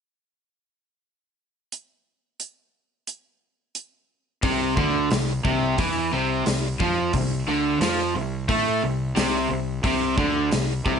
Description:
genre	classic rock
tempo	89 BPM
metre	4/4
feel	straight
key	C major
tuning	A4 = 440 Hz
part	gated 80s drum kit	drums	1.7-11.0 s	hi-hat, kick drum, snare drum	-27 LUFS	equal	none
part	cranked stack guitar	riff	4.4-11.0 s	C3 to A3	-24 LUFS	right 6 dB	overdrive
part	crunchy overdriven guitar	riff	4.4-11.0 s	C3 to A3	-26 LUFS	left 12 dB	none
part	fuzz fingered electric bass	bass	4.4-11.0 s	C2 to A2	-30 LUFS	equal	overdrive
part	tambourine	percussion	5.1-10.7 s	none	-39 LUFS	left 12 dB	none
room	moderate studio reverb, RT60 0.7 s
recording	nothing above 10.7 kHz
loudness	-21 LUFS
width	side -7 dB against mid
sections	1.7-4.4 A section; 4.4-11.0 B section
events	none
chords	1.7 N.C.; 4.4 C

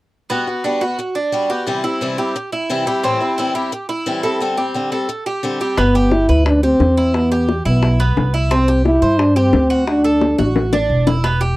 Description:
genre	latin, Cuban son and guajira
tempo	175 BPM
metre	4/4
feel	straight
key	G major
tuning	A4 = 440 Hz
part	picked swing-style acoustic guitar	accompaniment	0.3-5.8 s	A2 to F#4	-19 LUFS	left 2 dB	none
part	Cuban tres	arpeggios	0.3-11.6 s	B3 to C5	-21 LUFS	right 3 dB	none
part	warm French horn	melody	5.8-10.5 s	B3 to E4	-14 LUFS	equal	none
part	upright bass	bass	5.8-11.6 s	E1 to G2	-17 LUFS	equal	none
part	bongos	percussion	5.8-11.6 s	none	-21 LUFS	left 4 dB	none
room	light reverb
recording	dry, close 1970s-style studio recording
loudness	-14 LUFS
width	side -18 dB against mid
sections	0.3-5.8 A section; 5.8-11.6 B section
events	drum fill 10.2-11.2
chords	0.3 Gmaj7; 1.7 C; 3.0 Am7; 4.4 D7sus4; 5.8 G; 7.1 Em; 8.5 C; 9.9 D

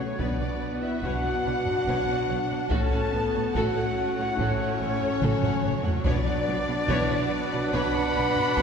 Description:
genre	cinematic, epic orchestral film score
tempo	72 BPM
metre	4/4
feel	straight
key	B minor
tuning	A4 = 440 Hz
part	warm studio violin section	melody	0.0-8.6 s	C#5 to B5	-35 LUFS	left 4 dB	none
part	bright concert flute	second line	0.0-8.6 s	C#5 to B5	-34 LUFS	left 2 dB	none
part	dark symphonic violin section	second line	0.0-8.6 s	F#4 to F#5	-36 LUFS	left 1 dB	none
part	rich symphonic viola section	accompaniment	0.0-8.6 s	E3 to D4	-34 LUFS	right 1 dB	none
part	clear trombone section	sustained chords	0.0-8.6 s	A2 to D4	-36 LUFS	right 2 dB	none
part	rich symphonic string section	sustained chords	0.0-8.6 s	B3 to D5	-37 LUFS	left 1 dB	none
part	clear trumpet	stabs	0.0-8.6 s	F#5	-34 LUFS	right 2 dB	none
part	rich symphonic cello section	bass	0.0-8.6 s	A2 to B2	-34 LUFS	right 2 dB	none
part	timpani	percussion	0.0-0.6 s	none	barely audible	none	none
part	mellow French horn section	sustained chords	0.2-8.6 s	C#4 to B4	-30 LUFS	left 1 dB	none
part	rich symphonic double bass section	bass	0.2-8.6 s	A1 to B1	-34 LUFS	right 2 dB	none
part	taiko ensemble	drums	0.2-8.6 s	none	-31 LUFS	equal	none
room	wet concert hall reverb, RT60 2.1 s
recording	heard from further back in the room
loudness	-23 LUFS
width	side -6 dB against mid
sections	0.0-8.6 A section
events	drum fill 5.2-6.1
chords	0.0 Bmadd9; 2.7 F#m/A; 6.1 Bmadd9

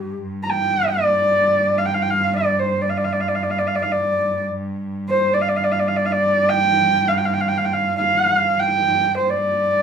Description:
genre	mongolian traditional, Mongolian folk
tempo	free time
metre	none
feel	none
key	unclear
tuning	A4 = 440 Hz
part	dark horsehead fiddle	melody	0.0-9.8 s	G4 to Bb5	-17 LUFS	right 1 dB	none
part	warm cello	drone	0.0-9.8 s	G2	-25 LUFS	right 1 dB	none
room	wet studio reverb, RT60 0.5 s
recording	band playing live in one room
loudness	-17 LUFS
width	side -7 dB against mid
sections	0.2-9.8 A section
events	none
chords	none

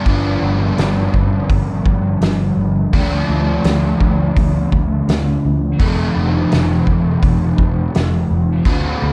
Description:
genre	rock, shoegaze and dream pop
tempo	84 BPM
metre	4/4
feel	straight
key	G mixolydian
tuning	A4 = 440 Hz
part	overdriven semi-hollow guitar	riff	0.0-9.1 s	F2 to F#4	-19 LUFS	equal	analog chorus
part	vintage muted fingered electric bass	bass	0.1-9.1 s	F1 to D2	-22 LUFS	equal	none
part	loose indie drum kit	drums	0.1-8.8 s	hi-hat, kick drum, snare drum	-20 LUFS	equal	none
room	small room ambience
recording	dark, warm production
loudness	-16 LUFS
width	mono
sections	0.1-9.1 A section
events	none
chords	0.1 G7; 2.9 Dm; 5.8 F7

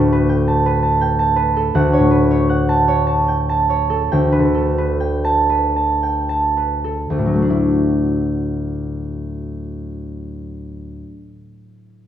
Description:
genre	classical, solo harp piece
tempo	52-84 BPM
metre	3/4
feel	rubato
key	D major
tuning	A4 = 441 Hz
part	concert harp	solo	0.0-11.3 s	D2 to A5	-16 LUFS	equal	none
room	moderate recital hall reverb, RT60 1.6 s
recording	none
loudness	-15 LUFS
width	side -10 dB against mid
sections	0.0-7.1 A section; 7.1-10.1 B section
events	slowing down 0.7-7.1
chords	0.0 Gadd9/D; 1.7 Dmaj7; 4.1 Gadd9/D; 7.1 Dadd9

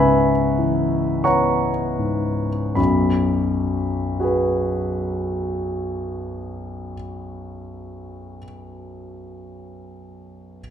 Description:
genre	classical, impressionist solo piano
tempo	37-47 BPM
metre	4/4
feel	rubato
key	unclear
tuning	A4 = 440 Hz
part	warm concert grand piano	solo	0.0-10.6 s	B1 to D#6	-20 LUFS	left 1 dB	none
room	wet recital hall reverb, RT60 1.4 s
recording	dark, warm production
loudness	-19 LUFS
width	side -8 dB against mid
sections	0.0-2.8 A section; 2.8-8.4 B section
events	slowing down 0.0-2.8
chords	0.0 C#m11; 2.8 B5

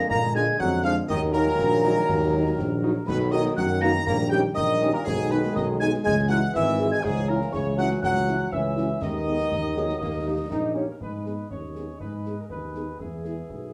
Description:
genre	military-style march for wind band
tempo	121 BPM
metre	2/4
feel	straight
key	Eb minor, G# minor from 3.1 s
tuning	A4 = 440 Hz
part	hollow piccolo	second line	0.0-10.8 s	G#5 to A#6	-34 LUFS	equal	none
part	warm euphonium	second line	0.0-13.7 s	G#2 to D#4	-32 LUFS	equal	none
part	bright trombone section	sustained chords	0.0-10.9 s	D3 to D#4	-34 LUFS	equal	none
part	dark tuba	bass	0.0-13.7 s	G#1 to Bb2	-30 LUFS	equal	none
part	bright trumpet section	melody	0.1-13.7 s	G4 to A#5	-34 LUFS	equal	none
part	mellow woodwind section	second line	0.1-13.7 s	G#4 to A#5	-35 LUFS	equal	none
part	concert snare drum, concert bass drum and clash cymbals	drums	0.1-13.7 s	none	-38 LUFS	equal	none
part	mellow French horn section	accompaniment	0.3-13.3 s	Gb3 to G#4	-31 LUFS	equal	none
room	wet studio reverb, RT60 0.5 s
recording	heard from further back in the room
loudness	-24 LUFS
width	mono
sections	0.0-11.0 A section; 11.0-13.7 B section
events	none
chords	0.0 Bb7; 1.1 Ebm; 3.1 B; 4.1 D#7/A#; 5.1 G#m/B; 6.0 C#m; 7.0 C#madd11; 9.0 G#m/D#; 10.0 D#; 11.0 G#m; 13.0 E

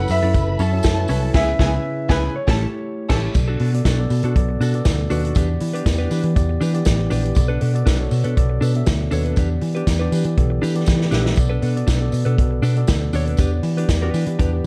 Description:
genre	disco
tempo	120 BPM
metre	4/4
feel	straight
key	B minor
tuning	A4 = 440 Hz
part	clear baby grand piano	melody	0.0-3.1 s	B4 to F#5	-27 LUFS	equal	none
part	warm studio violin section	second line	0.0-3.3 s	G#4 to B5	-31 LUFS	equal	none
part	direct-recorded clean electric guitar	accompaniment	0.0-14.6 s	B3 to C#5	-32 LUFS	equal	spring reverb
part	mellow tine electric piano	accompaniment	0.0-14.7 s	B2 to E5	-27 LUFS	equal	none
part	vintage muted picked electric bass	bass	0.0-14.6 s	F#1 to E3	-22 LUFS	equal	none
part	vintage drum kit	drums	0.1-14.5 s	crash cymbal, hi-hat, kick drum, snare drum	-23 LUFS	equal	none
part	tambourine	percussion	0.1-14.5 s	none	-41 LUFS	equal	none
room	small room ambience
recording	dark, warm production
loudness	-19 LUFS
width	mono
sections	0.0-3.3 A section; 3.3-14.7 B section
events	band accent 1.3-3.3; drum fill 10.9-11.4; tine electric piano fill 14.4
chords	0.0 F#m7; 1.3 C#m7; 2.3 A7; 3.3 Bm7; 5.4 Em7; 7.4 Bm7; 9.4 Em7; 11.4 Bm7; 13.4 Em7

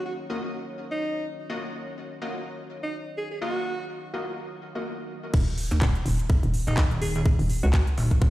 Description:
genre	bass house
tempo	125 BPM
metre	4/4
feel	swing 57% on 16ths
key	Eb minor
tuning	A4 = 437 Hz
part	dark analog pad	sustained chords	0.0-5.3 s	Eb4 to Db5	-40 LUFS	left 1 dB	chorus, sidechain pumping
part	clear alto saxophone	melody	0.1-7.8 s	Eb4 to Ab4	-33 LUFS	right 1 dB	digital delay
part	orchestra-hit-like synth stab	stabs	0.3-4.9 s	Bb3 to Eb5	-35 LUFS	left 2 dB	built-in reverb, cassette tape, sidechain pumping, digital delay
part	hollow knocking FM bass	bass	5.3-8.0 s	Eb1 to Db2	-24 LUFS	equal	overdrive, sidechain pumping
part	big-room dance drum kit	drums	5.3-8.2 s	crash cymbal, handclaps, hi-hat	-34 LUFS	equal	none
part	electronic kick drum	drums	5.3-8.3 s	none	-20 LUFS	equal	overdrive
part	pulsing pluck wobble bass	bass	5.7-8.3 s	Eb1 to Eb2	-24 LUFS	equal	chorus, overdrive, sidechain pumping
room	light reverb, digital ambience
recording	played on a big sound system in a bare room, stone room reverb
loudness	-24 LUFS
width	side -16 dB against mid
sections	0.0-5.3 A section; 5.3-8.3 B section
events	filter sweep on analog synth pad 0.0-5.3; drop 5.3-8.3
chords	0.0 Ebmadd9; 5.3 N.C.

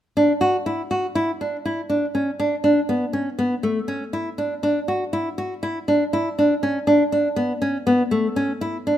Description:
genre	contemporary instrumental, contemporary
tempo	241 BPM (eighths)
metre	9/8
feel	straight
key	D major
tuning	A4 = 440 Hz
part	nylon-string guitar	solo	0.2-9.0 s	A3 to F#4	-19 LUFS	equal	none
room	light reverb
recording	close, detailed microphones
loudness	-19 LUFS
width	side -11 dB against mid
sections	0.2-9.0 A section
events	none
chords	none

